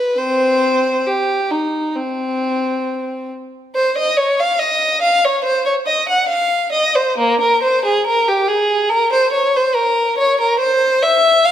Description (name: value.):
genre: classical, baroque-style suite movement for unaccompanied violin.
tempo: 69 BPM.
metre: 4/4.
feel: uneven beats, rubato.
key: C minor, F minor from 3.7 s.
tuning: A4 = 440 Hz.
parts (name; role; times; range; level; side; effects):
warm violin; solo; 0.0-11.5 s; Bb3 to Gb5; -14 LUFS; equal; none.
room: wet recital hall reverb, RT60 1.6 s.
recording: none.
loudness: -14 LUFS.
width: side -10 dB against mid.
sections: 0.0-3.7 A section; 3.7-11.5 A section.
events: none.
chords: none.